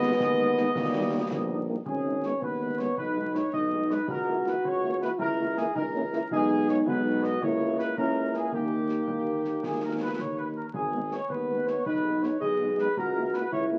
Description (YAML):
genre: military-style march for wind band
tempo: 108 BPM (dotted quarters)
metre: 6/8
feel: straight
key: G# minor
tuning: A4 = 438 Hz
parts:
  - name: warm trumpet section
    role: melody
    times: 0.0-13.6 s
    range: G4 to D#5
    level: -35 LUFS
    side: equal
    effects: none
  - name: warm euphonium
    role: second line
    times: 0.0-13.8 s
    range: A#3 to G#4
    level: -31 LUFS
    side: equal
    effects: none
  - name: mellow French horn section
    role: accompaniment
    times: 0.0-13.8 s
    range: E3 to E4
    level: -35 LUFS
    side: equal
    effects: none
  - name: bright trombone section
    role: sustained chords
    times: 0.0-1.7 s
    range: G3 to B3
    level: -36 LUFS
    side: equal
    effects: none
  - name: warm tuba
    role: bass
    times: 0.0-13.8 s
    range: G#1 to D#2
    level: -36 LUFS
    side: equal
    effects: none
  - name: concert snare drum and concert bass drum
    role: drums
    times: 0.2-13.7 s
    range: none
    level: -42 LUFS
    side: equal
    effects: none
room: wet plate reverb, RT60 2.2 s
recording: very old 78 rpm record, vinyl crackle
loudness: -28 LUFS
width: mono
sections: 0.0-1.9 A section; 1.9-13.8 B section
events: none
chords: 0.0 G#m/D#; 0.8 D#; 1.9 G#m; 3.0 G#m/B; 4.1 A#dim/C#; 6.3 G#m/B; 7.4 A#dim/C#; 8.5 D#; 10.7 G#m; 11.9 G#m/B; 13.0 A#dim/C#